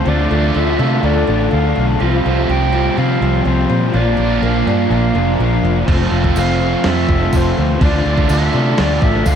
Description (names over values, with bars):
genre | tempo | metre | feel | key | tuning
rock, shoegaze and dream pop | 124 BPM | 4/4 | straight | unclear | A4 = 440 Hz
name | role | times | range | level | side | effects
silver concert flute | melody | 0.0-9.4 s | C5 to G5 | -23 LUFS | equal | ping-pong delay
picked twelve-string acoustic guitar | arpeggios | 0.0-9.4 s | E3 to A4 | -26 LUFS | left 7 dB | analog chorus, ping-pong delay
biting overdriven guitar | riff | 0.0-9.4 s | Bb2 to F4 | -20 LUFS | right 8 dB | reverse reverb
overdriven semi-hollow guitar | riff | 0.0-9.4 s | Bb2 to F4 | -21 LUFS | left 8 dB | ensemble chorus
tight distorted guitar | riff | 0.0-9.4 s | Bb2 to F4 | -22 LUFS | equal | distortion
vintage muted fingered electric bass | bass | 0.0-9.4 s | F1 to C3 | -17 LUFS | equal | none
clean 12-bit digital drum machine | drums | 5.9-9.4 s | crash cymbal, kick drum, snare drum | -18 LUFS | equal | none
tambourine | percussion | 6.4-9.4 s | none | -34 LUFS | right 6 dB | none
room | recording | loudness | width
moderate lush hall reverb, RT60 2.1 s | dreamy mix soaked in reverb | -12 LUFS | side -8 dB against mid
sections
0.0-9.4 A section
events
none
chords
0.1 Dm; 2.0 Csus4; 3.9 Bb; 5.9 Fmaj7; 7.8 Dm